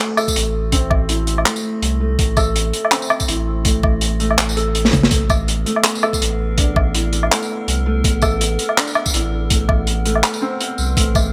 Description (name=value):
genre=half-time drum and bass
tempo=164 BPM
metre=4/4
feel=swing 57% on 16ths, half-time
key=unclear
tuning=A4 = 440 Hz
part: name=felt-muted upright piano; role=arpeggios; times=0.0-11.3 s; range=A3 to A4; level=-26 LUFS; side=equal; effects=digital delay
part: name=metallic inharmonic drone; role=texture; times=0.1-11.3 s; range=A3 to B3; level=-33 LUFS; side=equal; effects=chorus, built-in reverb, phaser
part: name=crunchy breakbeat drum kit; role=drums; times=0.2-11.2 s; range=handclaps, hi-hat, snare drum, tambourine, toms, woodblock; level=-20 LUFS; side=equal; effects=none
part: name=electronic kick drum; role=drums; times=0.3-11.2 s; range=none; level=-21 LUFS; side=equal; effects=none
part: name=saturated sub bass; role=bass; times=0.4-11.3 s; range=G1 to C2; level=-23 LUFS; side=equal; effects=none
room=light reverb, studio reverb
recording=bright 1980s-style digital production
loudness=-18 LUFS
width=mono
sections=0.0-11.3 A section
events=drum fill 4.8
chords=0.0 Am